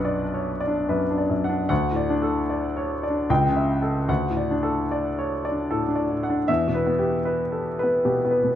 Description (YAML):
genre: classical, romantic character piece for solo piano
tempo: 75 BPM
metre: 3/4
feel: rubato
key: unclear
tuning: A4 = 440 Hz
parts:
  - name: warm grand piano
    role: solo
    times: 0.0-8.6 s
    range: B1 to G5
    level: -21 LUFS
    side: left 1 dB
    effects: none
room: wet large studio reverb, RT60 0.9 s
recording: dark, warm production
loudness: -21 LUFS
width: side -11 dB against mid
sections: 0.0-8.6 A section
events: none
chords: 0.0 Bm; 1.7 D; 3.3 A7/C#; 4.1 D; 6.5 Em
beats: 0.06 0.89 | 1.70 2.50 3.30 | 4.09 4.91 5.70 | 6.49 7.26 8.05